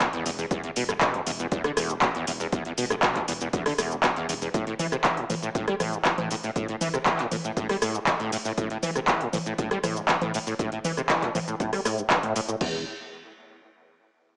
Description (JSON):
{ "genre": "acid house", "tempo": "119 BPM", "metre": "4/4", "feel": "straight", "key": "unclear", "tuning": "A4 = 440 Hz", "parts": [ { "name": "acid bass, saw", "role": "riff", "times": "0.0-12.8 s", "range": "D2 to G3", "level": "-29 LUFS", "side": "equal", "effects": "overdrive, ensemble chorus, vintage 12-bit sampler grit, sidechain pumping, tape echo" }, { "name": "booming analog drum machine", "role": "drums", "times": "0.0-12.6 s", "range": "cabasa, congas, handclaps, hi-hat, rim click", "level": "-25 LUFS", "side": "equal", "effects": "overdrive" }, { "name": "punchy analog drum machine", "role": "drums", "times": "0.0-12.7 s", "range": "crash cymbal, kick drum", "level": "-31 LUFS", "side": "equal", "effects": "none" }, { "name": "saturated sub bass", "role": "bass", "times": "0.3-4.5, 12.6-12.8 s", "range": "E1", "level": "-41 LUFS", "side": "equal", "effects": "sidechain pumping" } ], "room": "moderate digital room reverb, RT60 1.2 s", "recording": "small speaker sound", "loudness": "-24 LUFS", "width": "side -26 dB against mid", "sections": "0.0-12.6 A section; 12.6-14.4 B section", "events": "none", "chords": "0.0 E5; 4.5 A5; 12.6 N.C.", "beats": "0.01 | 0.51 1.01 1.52 2.02 | 2.53 3.03 3.53 4.04 | 4.54 5.05 5.55 6.05 | 6.56 7.06 7.57 8.07 | 8.58 9.08 9.58 10.09 | 10.59 11.10 11.60 12.11 | 12.61" }